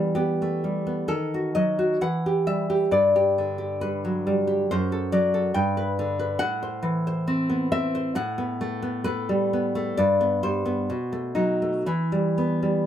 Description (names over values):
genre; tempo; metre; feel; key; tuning
romantic piece for solo classical guitar; 58-71 BPM; 2/4; rubato; E minor; A4 = 441 Hz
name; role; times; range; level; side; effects
nylon-string guitar; solo; 0.0-12.9 s; F#2 to G5; -22 LUFS; equal; none
room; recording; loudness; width
light reverb; none; -22 LUFS; side -10 dB against mid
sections
0.0-12.9 A section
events
none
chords
0.0 Em; 1.1 D#dim; 2.0 Em; 2.9 G; 4.7 D7/F#; 5.5 G; 6.4 Am; 8.2 B5/A; 10.0 Gadd11; 10.9 B7b9; 11.9 Em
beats
0.17 | 1.10 2.01 | 2.91 3.81 | 4.69 5.54 | 6.40 7.28 | 8.16 9.05 | 9.96 10.90 | 11.87